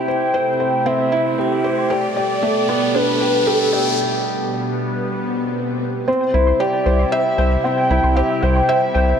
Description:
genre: piano and strings electronica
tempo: 115 BPM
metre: 4/4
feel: straight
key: C major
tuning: A4 = 436 Hz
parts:
  - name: warm velvety synth lead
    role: melody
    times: 0.0-8.9 s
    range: G4 to G5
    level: -20 LUFS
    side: equal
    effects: chorus, cassette tape, digital delay
  - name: lush unison pad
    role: sustained chords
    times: 0.0-9.2 s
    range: B2 to E4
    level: -25 LUFS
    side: left 1 dB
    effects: chorus, phaser
  - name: felt-muted upright piano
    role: riff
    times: 0.0-9.2 s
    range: A3 to E5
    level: -20 LUFS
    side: equal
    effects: digital delay
  - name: riser and swell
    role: sound effects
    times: 0.7-6.1 s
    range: none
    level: -27 LUFS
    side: left 1 dB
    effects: none
  - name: warbly dusty pluck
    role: arpeggios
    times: 0.1-9.0 s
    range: A4 to C6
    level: -27 LUFS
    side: right 3 dB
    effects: none
  - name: round analog bass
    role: bass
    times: 6.3-9.1 s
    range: C2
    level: -17 LUFS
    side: equal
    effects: none
room: wet concert hall reverb, RT60 2.6 s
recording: none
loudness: -16 LUFS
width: side -7 dB against mid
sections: 0.0-6.1 A section; 6.1-9.2 B section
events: build-up 0.0-6.1; filter sweep on analog synth pad 0.0-6.1; riser 0.7-4.0; break 4.0-6.1; swell 5.2-6.1; drop 6.1-9.2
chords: 0.0 C; 1.9 Gadd9; 6.1 C

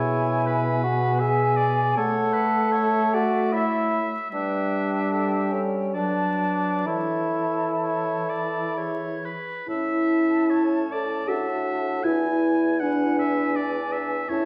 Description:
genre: classical, slow romantic movement for wind quintet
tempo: 61-82 BPM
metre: 3/4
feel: rubato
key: A major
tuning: A4 = 439 Hz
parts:
  - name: concert flute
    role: melody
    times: 0.0-14.5 s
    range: E5 to B5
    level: -36 LUFS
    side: equal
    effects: none
  - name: bright oboe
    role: second line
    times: 0.0-14.5 s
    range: B4 to G#5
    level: -33 LUFS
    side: equal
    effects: none
  - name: dark clarinet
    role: accompaniment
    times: 0.0-14.5 s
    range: C#4 to C#5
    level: -35 LUFS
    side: equal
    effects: none
  - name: mellow French horn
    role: accompaniment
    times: 0.0-14.5 s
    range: B2 to A4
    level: -28 LUFS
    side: equal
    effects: none
  - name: warm bassoon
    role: bass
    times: 0.0-14.5 s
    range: E2 to A4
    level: -28 LUFS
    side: equal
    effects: none
room: wet recital hall reverb, RT60 1.4 s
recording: heard from further back in the room, vinyl crackle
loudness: -24 LUFS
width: mono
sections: 0.0-9.7 A section; 9.7-14.5 B section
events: none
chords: 0.0 E/B; 2.0 A; 4.3 A7/G; 5.9 D/F#; 6.9 A/E; 8.8 E; 9.7 A; 12.0 E7

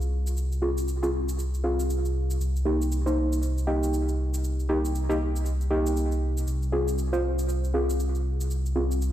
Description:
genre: afro house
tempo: 118 BPM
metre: 4/4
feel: swing 60% on 16ths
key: unclear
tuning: A4 = 442 Hz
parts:
  - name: deep mellow chord stab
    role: stabs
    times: 0.0-8.8 s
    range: Bb3 to C5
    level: -28 LUFS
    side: equal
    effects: chorus, dub echo
  - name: dark detuned saw bass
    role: bass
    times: 0.0-9.1 s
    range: C2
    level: -26 LUFS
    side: equal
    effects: none
  - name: cabasa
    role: drums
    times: 0.0-9.1 s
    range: none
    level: -42 LUFS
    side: right 2 dB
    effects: small room reverb
room: light reverb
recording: played on a big sound system in a bare room, large studio reverb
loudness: -24 LUFS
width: side -12 dB against mid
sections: 0.0-9.1 A section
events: none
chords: 0.0 Fm/C; 2.4 Cm7; 6.5 Fm/C

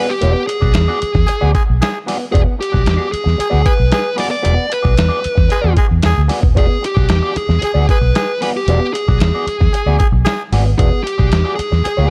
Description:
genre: funk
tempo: 114 BPM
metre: 4/4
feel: straight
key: E mixolydian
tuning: A4 = 438 Hz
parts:
  - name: smooth overdriven lead guitar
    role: melody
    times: 0.0-12.1 s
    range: G4 to D5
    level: -22 LUFS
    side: equal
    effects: none
  - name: electric guitar at the edge of break-up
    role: accompaniment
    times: 0.0-12.1 s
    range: B3 to D5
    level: -25 LUFS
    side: equal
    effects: wah
  - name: vintage muted fingered electric bass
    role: bass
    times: 0.2-12.1 s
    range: D#1 to E2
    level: -17 LUFS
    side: equal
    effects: none
  - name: lo-fi sampler-style drum kit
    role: drums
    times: 0.2-12.0 s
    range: hi-hat, kick drum, snare drum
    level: -19 LUFS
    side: equal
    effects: none
  - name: growling tenor saxophone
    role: second line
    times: 1.3-11.9 s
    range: G#4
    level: -25 LUFS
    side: equal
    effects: none
room: little or no reverb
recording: none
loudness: -15 LUFS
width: mono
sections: 0.0-12.1 A section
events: none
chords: 0.0 E9

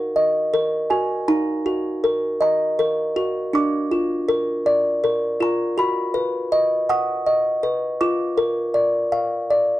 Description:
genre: children's music, lullaby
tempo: 53 BPM (dotted quarters)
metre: 6/8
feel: rubato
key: Eb minor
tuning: A4 = 440 Hz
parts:
  - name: music box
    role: solo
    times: 0.0-9.8 s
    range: D4 to D#6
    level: -18 LUFS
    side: equal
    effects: none
room: little or no reverb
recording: dry, close 1970s-style studio recording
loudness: -18 LUFS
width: side -15 dB against mid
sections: 0.0-1.3 A section; 1.3-9.8 B section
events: none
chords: 0.0 Ebm; 3.5 Bb/D; 5.8 B; 8.0 Bb

